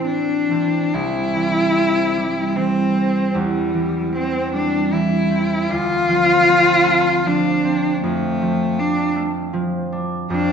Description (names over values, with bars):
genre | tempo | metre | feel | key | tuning
classical, romantic duo for cello and harp | 66-80 BPM | 3/4 | rubato | C major | A4 = 443 Hz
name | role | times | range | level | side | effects
rich cello | melody | 0.0-10.5 s | G3 to F4 | -18 LUFS | left 2 dB | none
concert harp | accompaniment | 0.0-10.5 s | C2 to D4 | -20 LUFS | right 2 dB | none
room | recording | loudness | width
wet recital hall reverb, RT60 1.6 s | recorded in a church or concert hall, nothing above 7.7 kHz | -16 LUFS | side -7 dB against mid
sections
0.9-10.5 A section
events
none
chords
0.0 Am; 0.9 C; 3.4 C/E; 5.7 Dm7; 8.0 Dm/F